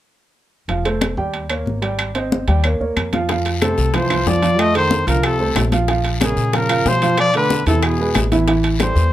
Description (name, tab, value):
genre	Afro-Cuban jazz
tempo	185 BPM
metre	4/4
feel	straight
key	F major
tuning	A4 = 437 Hz
part	warm upright piano	accompaniment	0.7-9.1 s	E3 to G5	-20 LUFS	right 3 dB	none
part	upright bass	bass	0.7-9.1 s	F1 to B2	-21 LUFS	equal	none
part	congas	percussion	0.7-9.0 s	none	-24 LUFS	left 3 dB	none
part	timbales	percussion	0.7-9.0 s	none	-26 LUFS	right 4 dB	none
part	claves	percussion	1.0-9.0 s	none	-29 LUFS	left 4 dB	none
part	bongos	percussion	3.3-9.1 s	none	-27 LUFS	left 8 dB	none
part	guiro	percussion	3.3-9.1 s	none	-32 LUFS	left 7 dB	none
part	warm trumpet	melody	3.6-9.1 s	Ab4 to Eb5	-19 LUFS	left 2 dB	none
part	trombone with metal mute	second line	3.6-9.1 s	B2 to A3	-24 LUFS	right 2 dB	none
room	light reverb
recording	none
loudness	-15 LUFS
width	side -13 dB against mid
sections	0.7-3.3 A section; 3.3-9.1 B section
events	none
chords	0.7 F; 1.3 Eb7; 2.0 Abmaj7; 2.6 Ebsus2; 3.3 Fmaj7; 4.6 F7; 5.9 Bbm7; 7.2 Bm7b5; 7.8 E; 8.5 Am7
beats	| 0.69 1.01 1.34 1.67 | 1.99 2.32 2.64 2.97 | 3.29 3.62 3.94 4.27 | 4.59 4.92 5.24 5.57 | 5.89 6.21 6.54 6.86 | 7.18 7.51 7.83 8.16 | 8.48 8.80 9.13